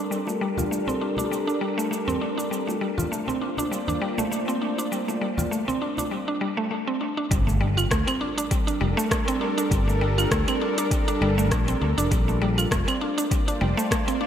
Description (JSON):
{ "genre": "organic downtempo", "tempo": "100 BPM", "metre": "4/4", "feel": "swing 55% on 16ths", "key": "G minor", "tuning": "A4 = 440 Hz", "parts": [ { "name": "bowed-like drone", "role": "sustained chords", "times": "0.0-14.3 s", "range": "G3 to D5", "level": "-29 LUFS", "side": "equal", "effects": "built-in reverb, sidechain pumping" }, { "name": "mallet-like synth pluck", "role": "arpeggios", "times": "0.0-14.3 s", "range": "G3 to F4", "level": "-26 LUFS", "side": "equal", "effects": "chorus, diffuse ambient delay" }, { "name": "organic electronic drum kit", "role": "drums", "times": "0.1-14.2 s", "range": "cabasa, claves, hi-hat, rim click", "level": "-29 LUFS", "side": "right 1 dB", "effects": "overdrive" }, { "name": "bongos and congas", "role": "percussion", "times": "0.3-6.1 s", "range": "none", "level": "-34 LUFS", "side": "left 2 dB", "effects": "none" }, { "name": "fretless electric bass", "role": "bass", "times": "7.3-13.7 s", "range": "F1 to D2", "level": "-24 LUFS", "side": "equal", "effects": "lush chorus" }, { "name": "electronic kick drum", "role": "drums", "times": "7.3-14.0 s", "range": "none", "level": "-26 LUFS", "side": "equal", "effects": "overdrive" }, { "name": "impact", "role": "sound effects", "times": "7.3-9.7 s", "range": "none", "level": "-32 LUFS", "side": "equal", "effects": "none" } ], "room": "wet lush hall reverb, RT60 1.7 s", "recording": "dreamy mix soaked in reverb", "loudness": "-22 LUFS", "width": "side -9 dB against mid", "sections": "0.0-7.3 A section; 7.3-14.3 B section", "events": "impact 7.3-9.7", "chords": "0.0 Gm7" }